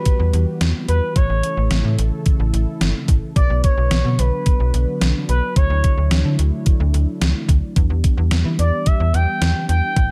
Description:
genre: synth-pop.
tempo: 109 BPM.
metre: 4/4.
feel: straight.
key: unclear.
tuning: A4 = 437 Hz.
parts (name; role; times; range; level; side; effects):
expressive portamento lead; melody; 0.0-10.1 s; B4 to G5; -26 LUFS; equal; chorus.
warm analog pad; sustained chords; 0.0-10.1 s; C#3 to B4; -29 LUFS; equal; chorus.
clean 12-bit digital drum machine; drums; 0.1-10.1 s; hi-hat, kick drum, snare drum; -20 LUFS; equal; gated reverb.
slap-like FM bass; bass; 0.2-10.1 s; G1 to E3; -20 LUFS; equal; none.
room: digital ambience.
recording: none.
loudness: -18 LUFS.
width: mono.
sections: 0.0-10.1 A section.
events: none.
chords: 0.0 Emadd9; 1.2 A; 3.4 Bm; 5.6 Dadd9; 7.8 Em.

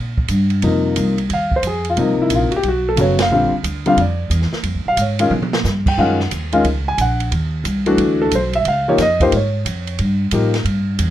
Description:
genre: jazz piano trio.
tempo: 180 BPM.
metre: 4/4.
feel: swing 65% on 8ths.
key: unclear.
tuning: A4 = 440 Hz.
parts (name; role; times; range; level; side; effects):
upright bass; bass; 0.0-11.1 s; F#1 to Cb3; -19 LUFS; right 1 dB; none.
open jazz drum kit; drums; 0.2-11.1 s; crash cymbal, hi-hat, kick drum, ride cymbal, snare drum, toms; -24 LUFS; right 2 dB; none.
warm concert grand piano; melody; 0.6-10.5 s; C3 to Ab5; -16 LUFS; left 1 dB; none.
room: moderate small room ambience, RT60 0.5 s.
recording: rough home demo mix.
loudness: -15 LUFS.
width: side -12 dB against mid.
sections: 0.6-11.1 A section.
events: band accent 3.1; drum fill 5.3-5.6.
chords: 0.0 C7(no3) (rootless); 0.6 F5; 2.0 Cm7; 2.6 B5; 3.3 Bb; 4.6 Db7(no3); 6.0 Gbmaj7; 7.3 N.C.; 8.0 Dadd9; 8.7 Db; 10.0 Gm9.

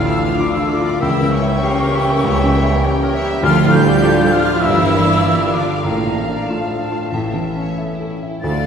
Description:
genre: classical, romantic movement for piano and orchestra.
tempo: 92-102 BPM.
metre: 4/4.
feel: rubato.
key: D minor.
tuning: A4 = 440 Hz.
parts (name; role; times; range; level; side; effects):
warm grand piano; melody; 0.0-8.7 s; C#2 to A#4; -18 LUFS; left 1 dB; none.
warm symphonic violin section; melody; 0.0-8.7 s; E5 to G5; -30 LUFS; left 3 dB; none.
bright flute section; second line; 0.0-8.7 s; A5 to A6; -22 LUFS; left 2 dB; none.
clear clarinet; second line; 0.0-8.1 s; C#5 to F5; -27 LUFS; left 1 dB; none.
warm symphonic violin section; second line; 0.0-8.7 s; C#4 to E5; -27 LUFS; left 1 dB; none.
warm chamber viola section; accompaniment; 0.0-8.7 s; A3 to A4; -24 LUFS; right 2 dB; none.
clear trombone section; sustained chords; 0.0-8.6 s; A2 to A3; -26 LUFS; right 2 dB; none.
warm French horn section; sustained chords; 0.0-8.6 s; A3 to F4; -27 LUFS; left 1 dB; none.
mellow tuba; bass; 0.0-8.7 s; G1 to D2; -26 LUFS; right 3 dB; none.
rich chamber double bass section; bass; 0.0-8.7 s; G1 to D2; -24 LUFS; right 2 dB; none.
warm chamber cello section; bass; 0.0-8.7 s; A2 to A3; -23 LUFS; right 3 dB; none.
timpani; percussion; 3.4-8.1 s; A2 to D3; -31 LUFS; left 1 dB; none.
room: wet scoring stage reverb, RT60 1.8 s.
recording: heard from further back in the room.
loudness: -14 LUFS.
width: side -7 dB against mid.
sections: 0.0-8.7 A section.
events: none.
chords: 0.0 Dm; 1.0 C#dim7; 3.4 Dm; 4.6 Gm7; 5.8 Dm/A; 7.1 A.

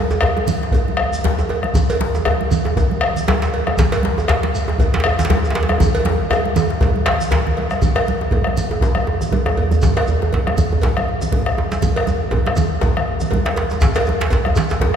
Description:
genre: west african traditional, West African drum ensemble.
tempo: 119 BPM.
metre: 4/4.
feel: swing 56% on 16ths.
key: none.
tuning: none.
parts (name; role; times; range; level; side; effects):
djembe; percussion; 0.1-14.9 s; none; -22 LUFS; right 2 dB; none.
shekere; percussion; 0.1-14.7 s; none; -30 LUFS; right 1 dB; none.
bombo; percussion; 0.2-14.9 s; none; -20 LUFS; equal; none.
cowbell; percussion; 0.2-14.9 s; none; -26 LUFS; right 3 dB; none.
djembe; percussion; 0.2-14.9 s; none; -22 LUFS; left 3 dB; none.
congas; percussion; 0.4-14.8 s; none; -24 LUFS; right 4 dB; none.
room: wet cathedral reverb, RT60 4.5 s.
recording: recorded in a church or concert hall.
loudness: -15 LUFS.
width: side -8 dB against mid.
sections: 0.0-7.8 A section; 7.8-15.0 A section.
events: drum fill 5.8-7.8.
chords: none.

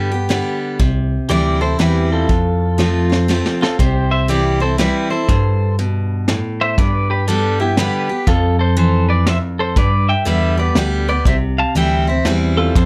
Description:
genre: honky-tonk and classic country.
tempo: 120 BPM.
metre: 3/4.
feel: swing 64% on 8ths.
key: unclear.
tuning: A4 = 440 Hz.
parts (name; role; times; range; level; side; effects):
pedal steel guitar; melody; 0.0-12.9 s; D4 to A5; -22 LUFS; equal; none.
picked steel-string acoustic guitar; accompaniment; 0.0-12.9 s; F2 to G4; -21 LUFS; equal; none.
bell-like tine electric piano; bass; 0.0-12.9 s; C2 to G2; -21 LUFS; equal; none.
vintage brush drum kit; drums; 0.3-12.9 s; hi-hat, kick drum, snare drum; -20 LUFS; equal; none.
room: light reverb.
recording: close, detailed microphones.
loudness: -16 LUFS.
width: mono.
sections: 0.0-3.8 A section; 3.8-12.9 B section.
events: drum fill 2.8-3.8.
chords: 0.0 G; 0.8 C; 2.3 F; 3.8 C; 6.8 G; 8.3 F; 9.8 G; 11.3 C.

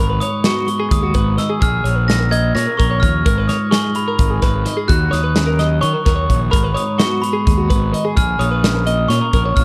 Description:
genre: math rock and midwest emo.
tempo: 256 BPM (eighths).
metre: 7/8.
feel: straight.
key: unclear.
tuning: A4 = 441 Hz.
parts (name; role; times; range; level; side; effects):
glockenspiel with soft plastic mallets; melody; 0.0-9.6 s; B5 to A#6; -24 LUFS; equal; slapback echo.
twelve-string electric guitar; accompaniment; 0.0-9.6 s; G#2 to C#5; -26 LUFS; equal; subtle chorus.
twelve-string electric guitar; arpeggios; 0.0-9.6 s; F#4 to D#5; -25 LUFS; equal; spring reverb.
fuzz fingered electric bass; bass; 0.0-9.6 s; G#1 to D#3; -21 LUFS; equal; overdrive.
modern studio drum kit; drums; 0.2-9.6 s; hi-hat, kick drum, snare drum; -20 LUFS; equal; none.
room: light reverb.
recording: dark, warm production.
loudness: -16 LUFS.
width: mono.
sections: 0.0-9.6 A section.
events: none.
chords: 0.0 G#m7; 1.6 A#m7; 3.3 C#9/G#; 4.9 D#m7; 6.5 G#m7; 8.2 A#m7.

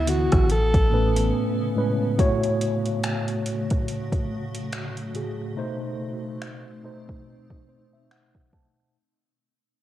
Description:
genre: contemporary R&B.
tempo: 71 BPM.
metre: 4/4.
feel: swing 58% on 16ths.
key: A major.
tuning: A4 = 440 Hz.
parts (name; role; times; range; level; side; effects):
clear alto saxophone; melody; 0.0-1.3 s; E4 to A4; -26 LUFS; equal; cassette tape, tape echo.
granular cloud pad; sustained chords; 0.0-8.9 s; B2 to G#5; -34 LUFS; right 1 dB; built-in reverb.
soft 808-style bass; bass; 0.0-1.3 s; A1 to D2; -22 LUFS; equal; none.
mellow tine electric piano; accompaniment; 0.1-9.0 s; A2 to A5; -26 LUFS; equal; medium stereo tremolo.
smooth R&B drum kit; drums; 0.1-8.8 s; finger snaps, hi-hat, kick drum, rim click; -25 LUFS; equal; cassette tape.
room: light reverb.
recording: home recording on cassette.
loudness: -22 LUFS.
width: side -13 dB against mid.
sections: 0.0-2.2 A section; 2.2-8.9 B section.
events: break 1.3-2.2; fade-out 2.2-8.9; tine electric piano fill 7.3-8.9.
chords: 0.5 Amaj9; 2.2 A6; 5.6 B7b9.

